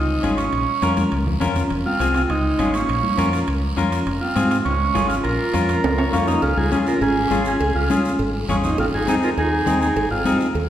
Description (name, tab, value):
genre	latin, cumbia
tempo	204 BPM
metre	4/4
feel	straight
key	unclear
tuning	A4 = 441 Hz
part	overdriven combo organ	melody	0.0-10.4 s	Db4 to Bb4	-23 LUFS	right 1 dB	spring reverb
part	deep dub fingered electric bass	bass	0.0-10.7 s	F1 to Ab2	-24 LUFS	equal	none
part	semi-hollow electric guitar	accompaniment	0.2-10.5 s	C4 to Bb5	-23 LUFS	left 2 dB	none
part	congas	percussion	0.2-10.4 s	none	-27 LUFS	left 1 dB	none
part	guiro	percussion	0.2-10.7 s	none	-37 LUFS	right 4 dB	none
part	timbales and cowbell	percussion	0.2-10.7 s	none	-30 LUFS	right 3 dB	none
part	clear clarinet	second line	1.9-10.4 s	Ab3 to F4	-26 LUFS	right 3 dB	none
room	wet recital hall reverb, RT60 1.4 s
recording	recorded in a church or concert hall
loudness	-17 LUFS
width	side -11 dB against mid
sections	0.0-6.4 A section; 6.4-10.7 B section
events	drum fill 1.0-1.7, 5.8-6.4; clean electric guitar fill 5.8-6.4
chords	0.0 Db; 0.5 Bbm; 1.7 Fm; 2.3 Db; 2.9 Bbm; 4.1 Fm; 4.7 Db; 5.2 Bbm; 6.4 Db; 8.8 Ab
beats	0.23 | 0.53 0.82 1.12 1.41 | 1.71 2.00 2.30 2.59 | 2.89 3.18 3.48 3.77 | 4.07 4.36 4.66 4.95 | 5.25 5.54 5.84 6.13 | 6.43 6.72 7.02 7.31 | 7.61 7.90 8.20 8.49 | 8.78 9.08 9.37 9.67 | 9.96 10.26 10.55